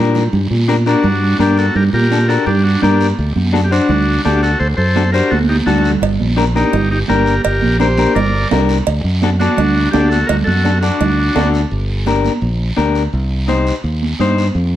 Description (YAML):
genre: latin, cumbia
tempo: 169 BPM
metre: 4/4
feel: straight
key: G harmonic minor, G minor from 11.7 s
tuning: A4 = 439 Hz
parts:
  - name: clean electric guitar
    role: accompaniment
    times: 0.0-14.5 s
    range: D4 to C5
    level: -18 LUFS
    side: left 6 dB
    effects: none
  - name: fingered electric bass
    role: bass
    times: 0.0-14.8 s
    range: G1 to Bb2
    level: -16 LUFS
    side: equal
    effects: none
  - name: congas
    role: percussion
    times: 0.1-14.7 s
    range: none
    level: -20 LUFS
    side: right 5 dB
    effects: none
  - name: guiro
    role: percussion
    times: 0.2-14.8 s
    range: none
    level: -29 LUFS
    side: right 3 dB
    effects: none
  - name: combo organ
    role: melody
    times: 0.9-11.5 s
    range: D4 to D5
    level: -18 LUFS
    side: equal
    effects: spring reverb
  - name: cowbell and timbales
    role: percussion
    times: 6.0-11.5 s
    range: none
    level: -22 LUFS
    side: right 7 dB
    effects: none
room: moderate large studio reverb, RT60 0.9 s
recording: none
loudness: -12 LUFS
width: side -12 dB against mid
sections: 0.3-11.7 A section; 11.7-14.8 B section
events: drum fill 0.0-0.3, 5.3-6.0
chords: 0.3 Gm; 3.2 D7; 6.0 Gm; 8.9 D; 11.7 Gm; 13.1 Cm